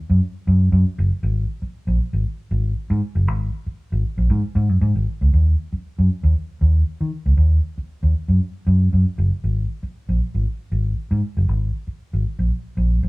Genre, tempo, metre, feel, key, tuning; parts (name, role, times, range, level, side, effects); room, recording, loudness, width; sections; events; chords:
funk; 117 BPM; 4/4; straight; Eb minor; A4 = 442 Hz
vintage muted fingered electric bass; solo; 0.1-13.1 s; Gb1 to Eb3; -17 LUFS; equal
moderate stone room reverb, RT60 1.0 s; band playing live in one room, small room ambience; -18 LUFS; side -23 dB against mid
0.0-5.3 A section; 5.3-13.1 B section